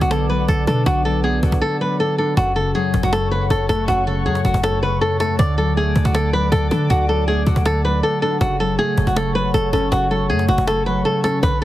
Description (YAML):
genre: hip hop, trap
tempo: 159 BPM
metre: 4/4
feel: half-time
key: F# minor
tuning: A4 = 440 Hz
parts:
  - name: flamenco guitar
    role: melody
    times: 0.0-11.6 s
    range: F#4 to D5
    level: -20 LUFS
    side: equal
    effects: low-pass filter, ping-pong delay
  - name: warbly lo-fi synth keys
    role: accompaniment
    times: 0.0-11.6 s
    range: F#2 to D4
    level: -22 LUFS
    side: equal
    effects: chorus, low-pass filter
  - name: dark analog pad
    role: sustained chords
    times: 0.0-11.6 s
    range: A4 to D6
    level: -30 LUFS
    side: left 1 dB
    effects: chorus, phaser
  - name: clean 808-style bass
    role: bass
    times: 0.0-11.6 s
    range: F#1 to D3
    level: -21 LUFS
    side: equal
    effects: none
  - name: cajon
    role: drums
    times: 0.0-11.6 s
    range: none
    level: -25 LUFS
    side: equal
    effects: none
room: little or no reverb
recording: heavily compressed radio sound, multiband compression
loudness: -16 LUFS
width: side -14 dB against mid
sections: 0.0-2.4 A section; 2.4-11.6 B section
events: drums muted 1.6-2.4; silent gap 8.0-8.4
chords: 0.0 Bm; 2.4 F#m; 5.4 D; 8.4 F#m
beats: 0.11 0.48 | 0.86 1.24 1.62 1.99 | 2.37 2.75 3.13 3.50 | 3.88 4.26 4.64 5.01 | 5.39 5.77 6.14 6.52 | 6.90 7.28 7.66 8.03 | 8.41 8.79 9.16 9.54 | 9.92 10.30 10.67 11.05 | 11.43